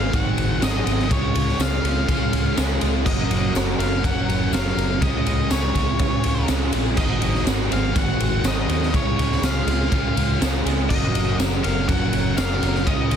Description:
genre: rock, shoegaze and dream pop.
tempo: 122 BPM.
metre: 4/4.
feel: straight.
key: unclear.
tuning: A4 = 439 Hz.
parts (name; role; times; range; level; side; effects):
octave-fuzz lead guitar; melody; 0.0-13.2 s; Db5 to Gb5; -28 LUFS; left 1 dB; distortion, slapback echo.
twelve-string electric guitar; arpeggios; 0.0-13.2 s; Eb3 to Gb4; -34 LUFS; right 12 dB; none.
distorted electric guitar; riff; 0.0-13.2 s; Gb2 to Db4; -31 LUFS; left 1 dB; none.
overdriven electric guitar; riff; 0.0-13.2 s; Ab2 to Bb4; -29 LUFS; left 13 dB; analog chorus.
overdriven semi-hollow guitar; riff; 0.0-13.2 s; Ab2 to Bb4; -28 LUFS; right 14 dB; reverse reverb.
vintage muted fingered electric bass; bass; 0.0-13.2 s; Gb1 to Eb2; -24 LUFS; equal; none.
raw garage drum kit; drums; 0.1-13.2 s; crash cymbal, kick drum, ride cymbal, snare drum; -23 LUFS; equal; none.
tambourine; percussion; 0.6-12.5 s; none; -36 LUFS; left 16 dB; none.
room: studio reverb.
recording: dense, heavily limited modern master.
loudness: -18 LUFS.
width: side -8 dB against mid.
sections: 0.0-13.2 A section.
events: none.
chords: 0.0 Ab7; 1.1 Db; 3.1 Gbmaj7; 5.0 Db; 7.0 Ab7; 8.9 Db; 10.9 Gbmaj7.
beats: 0.13 0.62 | 1.11 1.60 2.08 2.57 | 3.06 3.55 4.04 4.53 | 5.02 5.51 6.00 6.49 | 6.98 7.47 7.96 8.45 | 8.94 9.43 9.92 10.41 | 10.90 11.39 11.89 12.38 | 12.87.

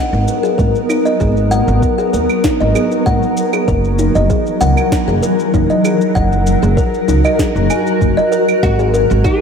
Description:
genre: organic downtempo.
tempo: 97 BPM.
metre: 4/4.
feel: straight.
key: G# minor.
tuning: A4 = 440 Hz.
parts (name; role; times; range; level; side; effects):
granular cloud pad; sustained chords; 0.0-9.4 s; E3 to A#4; -16 LUFS; left 1 dB; built-in reverb, sidechain pumping.
kalimba; arpeggios; 0.0-9.4 s; D#4 to G#5; -17 LUFS; equal; ping-pong delay.
upright bass; bass; 0.1-9.2 s; F#1 to D#2; -16 LUFS; equal; sidechain pumping.
electronic shaker, claves and snare drum; drums; 0.1-9.4 s; none; -25 LUFS; right 1 dB; none.
electronic kick drum; drums; 0.6-9.4 s; none; -18 LUFS; equal; none.
oud; melody; 8.6-9.4 s; F#4 to G#4; -19 LUFS; equal; ping-pong delay.
room: moderate plate reverb, RT60 2.7 s.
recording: dreamy mix soaked in reverb.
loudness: -11 LUFS.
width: side -6 dB against mid.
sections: 0.0-9.4 A section.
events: none.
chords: 0.0 G#m9; 3.7 F#7; 8.6 G#m9.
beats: 0.59 | 1.21 1.83 2.44 3.06 | 3.68 4.30 4.92 5.54 | 6.16 6.77 7.39 8.01 | 8.63 9.25.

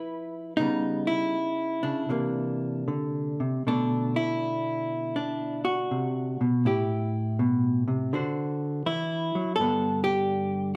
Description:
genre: solo jazz.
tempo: 81 BPM.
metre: 4/4.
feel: swing 66% on 8ths, rubato.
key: unclear.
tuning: A4 = 438 Hz.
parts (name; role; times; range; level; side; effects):
hollow-body jazz guitar; solo; 0.0-10.8 s; G2 to C5; -28 LUFS; equal; none.
room: wet club reverb, RT60 0.9 s.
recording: heard from further back in the room.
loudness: -28 LUFS.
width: mono.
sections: 0.0-10.8 A section.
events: none.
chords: 0.0 Fmaj7(b5, no3); 0.6 C#m7b5; 2.1 C9; 3.7 Bm7; 6.7 Am9; 8.1 D9; 9.6 G.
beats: | 0.59 1.34 2.10 2.88 | 3.67 4.42 5.16 5.91 | 6.65 7.39 8.13 8.86 | 9.59 10.31.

